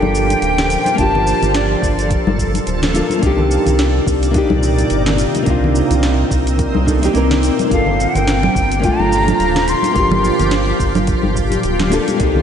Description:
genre	sunset chillout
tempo	107 BPM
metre	4/4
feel	swing 57% on 16ths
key	G minor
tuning	A4 = 440 Hz
part	reedy silver concert flute	melody	0.0-2.1, 7.7-10.5 s	D5 to C6	-19 LUFS	left 1 dB	ping-pong delay
part	nylon-string guitar	accompaniment	0.0-12.4 s	A3 to Bb4	-19 LUFS	moving between left 5 dB and right 3 dB	auto-pan, ping-pong delay
part	shimmering ambient pad	sustained chords	0.0-12.4 s	Bb2 to D5	-20 LUFS	equal	chorus, built-in reverb
part	round analog bass	bass	0.0-12.4 s	D1 to C2	-18 LUFS	equal	none
part	congas	percussion	0.0-12.4 s	none	-24 LUFS	left 4 dB	none
part	smooth R&B drum kit	drums	0.1-12.3 s	congas, hi-hat, shaker, snare drum	-23 LUFS	right 2 dB	overdrive
part	electronic kick drum	drums	1.0-12.3 s	none	-21 LUFS	equal	overdrive
room	wet lush hall reverb, RT60 2.8 s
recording	dreamy mix soaked in reverb, nothing above 10.5 kHz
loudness	-13 LUFS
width	side -8 dB against mid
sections	0.0-12.4 A section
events	none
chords	0.0 Gm9; 3.2 Cm9; 7.7 Gm9

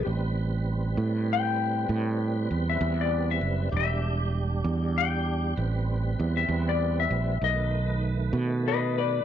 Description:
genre	slow blues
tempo	65 BPM (dotted quarters)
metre	12/8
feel	straight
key	unclear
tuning	A4 = 440 Hz
part	clean lap steel guitar	melody	0.0-9.2 s	B4 to G5	-29 LUFS	left 11 dB	none
part	tonewheel organ	sustained chords	0.0-9.2 s	D#3 to B4	-34 LUFS	right 3 dB	overdrive, chorus vibrato, slow rotary speaker
part	fretless electric bass	bass	0.0-9.2 s	E1 to B2	-26 LUFS	right 2 dB	none
room	little or no reverb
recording	none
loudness	-24 LUFS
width	side -10 dB against mid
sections	0.0-9.2 A section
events	electric slide guitar solo 0.0-9.2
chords	0.1 Am9; 3.7 Em7; 5.6 Am9; 7.4 B7

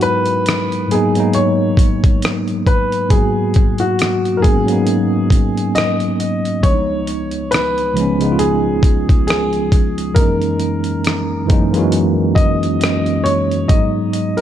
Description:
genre	lo-fi hip hop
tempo	68 BPM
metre	4/4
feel	swing 57% on 16ths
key	G# minor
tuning	A4 = 440 Hz
part	warm upright piano	melody	0.0-14.4 s	F#4 to D#5	-20 LUFS	left 1 dB	low-pass filter, analog delay
part	tine electric piano	accompaniment	0.0-14.4 s	C#2 to A#4	-17 LUFS	equal	medium stereo tremolo, low-pass filter
part	dusty soul sampler-style drum kit	drums	0.0-14.4 s	hi-hat, kick drum, rim click	-16 LUFS	equal	none
room	moderate plate reverb, RT60 1.8 s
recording	dreamy mix soaked in reverb, cassette tape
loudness	-13 LUFS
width	side -11 dB against mid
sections	0.0-14.4 A section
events	none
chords	0.0 G#m7; 6.6 C#7; 10.2 F#13; 13.7 G#m7

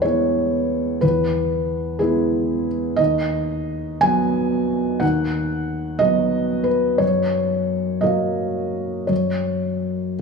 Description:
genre	neoclassical minimalist piano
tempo	55-62 BPM (dotted quarters)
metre	6/8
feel	rubato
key	unclear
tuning	A4 = 440 Hz
part	felt-muted upright piano	solo	0.0-10.2 s	D#2 to G#5	-18 LUFS	equal	none
room	moderate concert hall reverb, RT60 2.2 s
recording	studio ambience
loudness	-18 LUFS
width	side -4 dB against mid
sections	0.0-10.2 A section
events	none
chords	0.0 E; 3.0 B/D#; 7.0 F#

